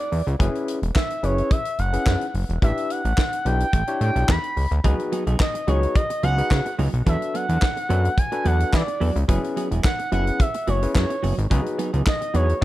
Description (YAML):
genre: early-eighties boogie funk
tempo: 108 BPM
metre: 4/4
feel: straight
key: unclear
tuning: A4 = 437 Hz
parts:
  - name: expressive portamento lead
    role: melody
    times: 0.0-12.6 s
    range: C#5 to B5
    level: -27 LUFS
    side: right 1 dB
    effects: chorus
  - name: fat analog bass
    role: bass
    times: 0.1-12.6 s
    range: E1 to E3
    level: -21 LUFS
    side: equal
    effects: none
  - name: tight funk drum kit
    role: drums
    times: 0.1-12.6 s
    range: crash cymbal, handclaps, hi-hat, kick drum, snare drum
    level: -22 LUFS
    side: equal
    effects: none
  - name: overdriven tine electric piano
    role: accompaniment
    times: 0.4-12.6 s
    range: C#4 to C#5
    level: -29 LUFS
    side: left 3 dB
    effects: none
  - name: clean electric guitar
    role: riff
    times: 4.8-12.6 s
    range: F#3 to A4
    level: -30 LUFS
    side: right 4 dB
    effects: analog chorus
room: small room ambience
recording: dark, warm production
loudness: -19 LUFS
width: side -16 dB against mid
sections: 0.0-12.6 A section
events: none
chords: 0.4 F#9sus4; 2.6 A9sus4; 4.8 C#9sus4; 7.1 E9sus4; 9.3 F#9sus4; 11.5 C#9sus4